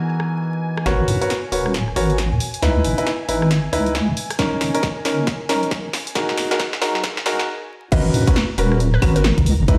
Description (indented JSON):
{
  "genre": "UK garage, two-step garage",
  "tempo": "136 BPM",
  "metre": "4/4",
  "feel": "swing 62% on 16ths",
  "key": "G# minor",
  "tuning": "A4 = 441 Hz",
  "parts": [
    { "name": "hollow square pluck", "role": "melody", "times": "0.0-0.8, 7.9-9.4 s", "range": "A#4 to G#5", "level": "-31 LUFS", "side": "equal", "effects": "chorus, cassette tape, delay" },
    { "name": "soft string machine", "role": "sustained chords", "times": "0.0-9.8 s", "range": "G#5 to A#5", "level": "-38 LUFS", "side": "equal", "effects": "ensemble chorus, sidechain pumping" },
    { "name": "warm baby grand piano", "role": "stabs", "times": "0.0-9.8 s", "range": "E3 to C#5", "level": "-24 LUFS", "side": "equal", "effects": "low-pass filter, delay" },
    { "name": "punchy analog drum machine", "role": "drums", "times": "0.2-9.8 s", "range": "claves, crash cymbal, hi-hat, rim click, snare drum", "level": "-27 LUFS", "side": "equal", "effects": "high-pass filter on snare, high-pass filter on hats, high-pass filter on cymbals, high-pass filter on perc" },
    { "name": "deep soft wobble bass", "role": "bass", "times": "0.9-9.8 s", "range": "D#1 to G#2", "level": "-22 LUFS", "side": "equal", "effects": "chorus, sidechain pumping" },
    { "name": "electronic kick drum", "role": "drums", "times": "4.4-9.8 s", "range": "none", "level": "-21 LUFS", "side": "equal", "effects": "none" }
  ],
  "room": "light reverb",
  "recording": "played on a big sound system in a bare room, stone room reverb, vinyl crackle, high-pass filter",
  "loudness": "-20 LUFS",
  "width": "mono",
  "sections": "0.9-7.9 A section; 7.9-9.8 B section",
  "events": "build-up 0.9-7.9; drum fill 0.9-7.5; filter sweep on string machine 0.9-7.9; filter sweep 0.9-7.9; break 7.5-7.9; drop 7.9-9.8",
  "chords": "0.0 Emaj9#11; 0.9 G#m11; 2.4 C#m9; 4.4 Bmaj9; 6.2 Emaj9#11; 7.9 G#m11"
}